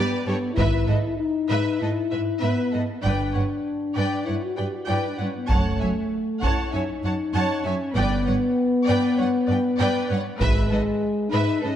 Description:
cinematic, epic orchestral film score; 98 BPM; 4/4; straight; A4 = 440 Hz
rich symphonic violin section; melody; 0.0-11.7 s; C#5 to A5; -32 LUFS; equal
dark symphonic violin section; second line; 0.0-11.7 s; A4 to F#5; -32 LUFS; left 2 dB
rich symphonic viola section; accompaniment; 0.0-11.7 s; G4 to C#5; -32 LUFS; right 2 dB
dark French horn section; sustained chords; 0.0-11.8 s; G#3 to G4; -24 LUFS; left 2 dB
rich symphonic cello section; bass; 0.0-11.7 s; F#2 to G#2; -27 LUFS; right 2 dB
rich symphonic double bass section; bass; 0.6-10.7 s; F#1 to G#1; -27 LUFS; right 2 dB
taiko ensemble; drums; 0.6-1.8, 5.5-6.7, 10.4-11.6 s; -25 LUFS; equal
moderate scoring stage reverb, RT60 1.8 s; dark, warm production; -21 LUFS; side -10 dB against mid
0.0-11.8 A section
0.0 G; 0.6 E/G#; 3.0 G; 5.5 F#m; 8.0 G; 10.4 E/G#
| 0.58 1.20 1.81 2.42 | 3.04 3.65 4.27 4.88 | 5.50 6.11 6.73 7.34 | 7.96 8.57 9.18 9.80 | 10.41 11.02 11.64

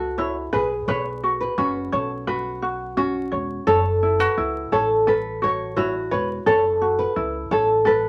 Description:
pop; 86 BPM; 4/4; straight; A4 = 440 Hz
nylon-string guitar; melody; 0.0-8.1 s; F#4 to C#5; -26 LUFS; equal
ukulele; accompaniment; 0.0-8.1 s; C#4 to E5; -26 LUFS; equal
upright bass; bass; 0.0-8.1 s; E1 to C#2; -33 LUFS; equal
flamenco guitar; arpeggios; 0.2-7.7 s; A4 to C#5; -32 LUFS; equal
moderate club reverb, RT60 0.6 s; vinyl crackle; -22 LUFS; mono
0.0-8.1 A section
0.0 Asus2; 0.5 Bsus2
0.18 | 0.88 1.58 2.27 2.97 | 3.67 4.37 5.07 5.77 | 6.47 7.16 7.86

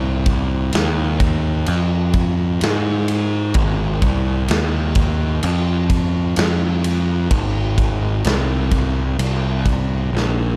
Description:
stoner and doom metal; 64 BPM; 4/4; straight; A4 = 440 Hz
fuzz picked electric bass; bass; 0.0-10.6 s; Ab1 to Ab2; -21 LUFS; equal; overdrive, tube saturation
big rock drum kit; drums; 0.3-10.4 s; kick drum, ride cymbal, snare drum; -23 LUFS; equal
little or no reverb; dark, warm production; -19 LUFS; mono
0.0-10.6 A section
drum fill 10.1-10.6
0.75 1.69 2.63 | 3.57 4.50 5.44 6.38 | 7.32 8.25 9.19 10.13

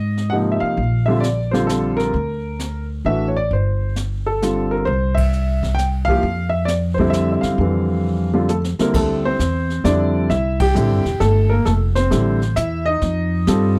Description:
jazz piano trio; 132 BPM; 3/4; swing 66% on 8ths; F major, D minor from 8.9 s; A4 = 440 Hz
warm concert grand piano; melody; 0.0-13.8 s; C3 to G5; -22 LUFS; equal
upright bass; bass; 0.0-13.8 s; E1 to Ab2; -22 LUFS; equal
jazz brush drum kit; drums; 0.2-13.8 s; brushed snare drum, crash cymbal, hi-hat, kick drum, ride cymbal, snare drum, toms; -28 LUFS; equal
studio ambience; dry, close 1970s-style studio recording; -19 LUFS; mono
0.0-8.9 A section; 8.9-13.8 B section
band accent 5.1, 10.5; drum fill 8.5-8.9
0.0 Abadd9; 0.8 Bbadd9; 2.1 D5; 3.5 Gsus2; 4.9 C; 6.2 Fmaj7(no3); 8.9 Dm11; 10.3 C13; 11.7 Fmaj9; 13.0 F7
0.33 | 0.78 1.24 1.69 | 2.15 2.60 3.06 | 3.51 3.97 4.42 | 4.87 5.33 5.78 | 6.23 6.68 7.14 | 7.59 8.04 8.49 | 8.95 9.40 9.85 | 10.30 10.76 11.21 | 11.66 12.12 12.57 | 13.02 13.48

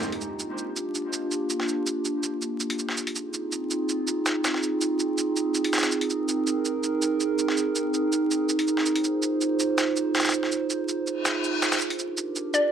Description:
drum and bass, jungle; 163 BPM; 4/4; swing 53% on 16ths; G phrygian; A4 = 442 Hz
warbly tape-like pad; sustained chords; 0.0-12.7 s; Bb3 to C5; -25 LUFS; right 2 dB; chorus, built-in reverb
dusty soul sampler-style drum kit; drums; 0.0-12.6 s; hi-hat, shaker, snare drum; -27 LUFS; right 1 dB; high-pass filter on perc, high-pass filter on hats, high-pass filter on snare
reverse cymbal; sound effects; 11.2-11.8 s; -30 LUFS; left 4 dB
hollow square pluck; melody; 12.5-12.7 s; D5; -20 LUFS; left 1 dB; chorus
wet digital room reverb, RT60 1.1 s, small room ambience; vinyl crackle; -24 LUFS; side -8 dB against mid
0.0-12.7 A section
reverse cymbal 11.2-11.8
0.0 Gm7; 3.0 Ab6; 5.9 Bb9sus4; 8.9 Fm7; 11.8 Gm7
| 0.03 0.39 0.76 1.13 | 1.50 1.87 2.23 2.60 | 2.97 3.34 3.71 4.08 | 4.44 4.81 5.18 5.55 | 5.92 6.28 6.65 7.02 | 7.39 7.76 8.12 8.49 | 8.86 9.23 9.60 9.96 | 10.33 10.70 11.07 11.44 | 11.80 12.17 12.54

